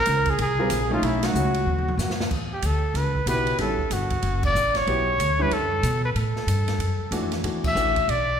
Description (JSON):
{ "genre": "modal jazz", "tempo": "187 BPM", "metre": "4/4", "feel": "swing 62% on 8ths", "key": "E dorian", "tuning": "A4 = 438 Hz", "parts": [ { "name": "warm trumpet", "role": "melody", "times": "0.0-8.4 s", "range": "E4 to E5", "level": "-24 LUFS", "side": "equal", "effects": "none" }, { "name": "upright bass", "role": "bass", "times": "0.0-8.4 s", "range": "F#1 to B2", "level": "-26 LUFS", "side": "equal", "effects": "none" }, { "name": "open jazz drum kit", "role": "drums", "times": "0.1-8.2 s", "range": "crash cymbal, hi-hat, kick drum, ride cymbal, snare drum, toms", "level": "-31 LUFS", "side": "right 1 dB", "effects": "none" }, { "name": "clear grand piano", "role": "accompaniment", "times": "0.6-7.9 s", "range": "D3 to Bb4", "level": "-28 LUFS", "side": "left 1 dB", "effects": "none" } ], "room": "wet recital hall reverb, RT60 1.6 s", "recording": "recorded in a church or concert hall", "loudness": "-21 LUFS", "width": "side -8 dB against mid", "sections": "0.0-2.3 A section; 2.3-8.4 B section", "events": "band accent 1.2, 4.4, 7.6; drum fill 1.7-2.3", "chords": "0.0 Bb7sus2; 1.0 B7; 2.3 E9sus4" }